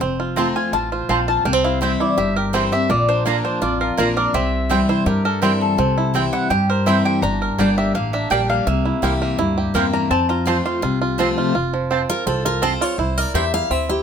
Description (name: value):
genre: bluegrass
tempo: 166 BPM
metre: 4/4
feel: straight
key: F major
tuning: A4 = 439 Hz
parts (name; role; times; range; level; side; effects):
- picked steel-string acoustic guitar; accompaniment; 0.0-14.0 s; F2 to F5; -21 LUFS; left 3 dB; none
- bluegrass banjo; arpeggios; 0.0-14.0 s; F3 to Bb4; -23 LUFS; right 5 dB; none
- upright bass; bass; 0.0-14.0 s; F1 to G2; -24 LUFS; equal; none
- mandolin; melody; 0.4-11.0 s; F4 to C6; -22 LUFS; left 2 dB; none
- mandolin; stabs; 0.4-13.4 s; Bb3 to Bb5; -23 LUFS; right 5 dB; none
room: light reverb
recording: none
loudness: -16 LUFS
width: side -7 dB against mid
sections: 0.0-11.5 A section; 11.5-14.0 B section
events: steel-string acoustic guitar solo 11.5-14.0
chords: 0.0 F; 1.5 C; 2.9 Bb; 4.3 C; 7.2 Gm; 8.7 C7; 10.1 F; 13.0 C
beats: | 0.01 0.37 0.73 1.09 | 1.45 1.81 2.17 2.54 | 2.90 3.26 3.62 3.98 | 4.34 4.70 5.06 5.42 | 5.78 6.14 6.51 6.87 | 7.23 7.59 7.95 8.31 | 8.67 9.03 9.39 9.75 | 10.11 10.47 10.83 11.19 | 11.55 11.91 12.27 12.63 | 12.99 13.35 13.71